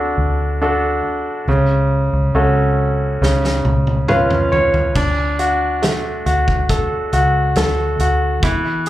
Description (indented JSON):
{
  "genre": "pop ballad",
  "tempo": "69 BPM",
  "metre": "4/4",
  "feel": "straight",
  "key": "unclear",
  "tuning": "A4 = 435 Hz",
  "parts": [
    { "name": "bright baby grand piano", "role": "accompaniment", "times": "0.0-8.9 s", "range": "C#3 to E#5", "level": "-17 LUFS", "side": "equal", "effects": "plate reverb, slapback echo" },
    { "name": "vintage muted fingered electric bass", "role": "bass", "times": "0.0-8.9 s", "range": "C#2 to E2", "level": "-18 LUFS", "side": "equal", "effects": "none" },
    { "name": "loose indie drum kit", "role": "drums", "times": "3.2-8.9 s", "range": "crash cymbal, hi-hat, kick drum, snare drum, toms", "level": "-20 LUFS", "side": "equal", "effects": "none" }
  ],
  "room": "moderate club reverb, RT60 0.5 s",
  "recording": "live gig heard through the venue's PA, club reverb",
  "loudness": "-14 LUFS",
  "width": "side -14 dB against mid",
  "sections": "0.0-5.0 A section; 5.0-8.9 B section",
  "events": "drum fill 3.2-5.0; grand piano fill 3.6-5.0",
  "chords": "0.0 D; 1.5 F#m/C#; 3.2 C#7; 5.0 D",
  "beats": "0.61 | 1.48 2.35 3.21 4.08 | 4.95 5.82 6.69 7.56 | 8.43"
}